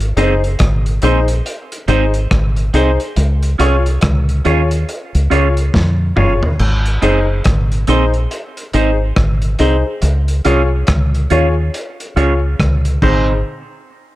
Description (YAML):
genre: roots reggae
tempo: 70 BPM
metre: 4/4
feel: swing 61% on 16ths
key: Ab mixolydian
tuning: A4 = 440 Hz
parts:
  - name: deep dub fingered electric bass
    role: bass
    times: 0.0-13.4 s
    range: Gb1 to F2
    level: -14 LUFS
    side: equal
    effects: none
  - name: crunchy breakbeat drum kit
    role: drums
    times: 0.0-13.3 s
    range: crash cymbal, hi-hat, kick drum, rim click, snare drum, toms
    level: -19 LUFS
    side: equal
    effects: none
  - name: clean electric guitar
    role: accompaniment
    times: 0.2-13.3 s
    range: C4 to Db5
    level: -20 LUFS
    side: right 5 dB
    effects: phaser, dub echo
  - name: warm concert grand piano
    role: stabs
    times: 0.2-13.4 s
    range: Eb4 to Db5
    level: -19 LUFS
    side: left 3 dB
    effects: none
room: small room ambience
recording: none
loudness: -12 LUFS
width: side -16 dB against mid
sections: 0.0-6.6 A section; 6.6-13.5 B section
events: drum fill 5.7-6.6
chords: 0.0 Ab; 3.2 Db; 6.6 Ab; 10.0 Db; 13.0 Ab; 13.5 N.C.